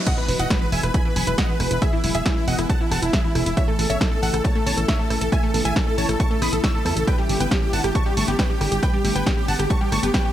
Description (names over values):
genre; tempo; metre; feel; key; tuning
uplifting trance; 137 BPM; 4/4; straight; unclear; A4 = 443 Hz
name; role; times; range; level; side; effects
riser, swell and impact; sound effects; 0.0-1.8 s; none; -34 LUFS; right 1 dB; none
dense compressed supersaw; melody; 0.1-10.3 s; E4 to E6; -26 LUFS; right 1 dB; sidechain pumping, dub echo
wide unison pluck; second line; 0.1-10.3 s; E4 to E6; -30 LUFS; right 1 dB; cassette tape, sidechain pumping
wide unison pluck; arpeggios; 0.1-10.3 s; B2 to A4; -30 LUFS; left 2 dB; sidechain pumping, dub echo
electronic kick drum; drums; 0.1-10.2 s; none; -22 LUFS; equal; high-pass filter on kick, high-pass filter on room
punchy analog drum machine; drums; 0.1-10.2 s; crash cymbal, hi-hat, rim click, snare drum; -27 LUFS; right 1 dB; none
solid FM bass; bass; 0.3-10.1 s; E1 to E2; -24 LUFS; equal; sidechain pumping
room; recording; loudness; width
light reverb; none; -18 LUFS; side -12 dB against mid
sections
0.1-10.3 A section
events
drop 0.1-10.3; impact 0.1-1.8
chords
0.1 E; 3.6 A; 7.1 G